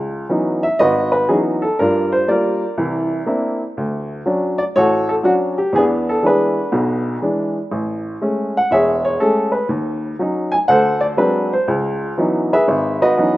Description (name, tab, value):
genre	solo jazz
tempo	121 BPM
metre	4/4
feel	swing 66% on 8ths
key	unclear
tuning	A4 = 436 Hz
part	warm upright piano	solo	0.0-13.4 s	E1 to G#5	-15 LUFS	equal	none
room	light reverb, small room ambience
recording	rough home demo mix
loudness	-15 LUFS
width	side -16 dB against mid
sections	0.0-13.4 A section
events	none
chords	0.0 C#m11; 1.8 Gm7; 2.8 C9; 3.8 Dmaj7; 5.7 E7; 7.7 Amaj7; 9.7 D#m7; 10.7 D7#11; 11.7 C#m11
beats	0.29 0.79 1.28 | 1.78 2.27 2.77 3.26 | 3.76 4.25 4.75 5.24 | 5.74 6.23 6.73 7.22 | 7.72 8.21 8.71 9.20 | 9.70 10.19 10.69 11.19 | 11.68 12.18 12.67 13.17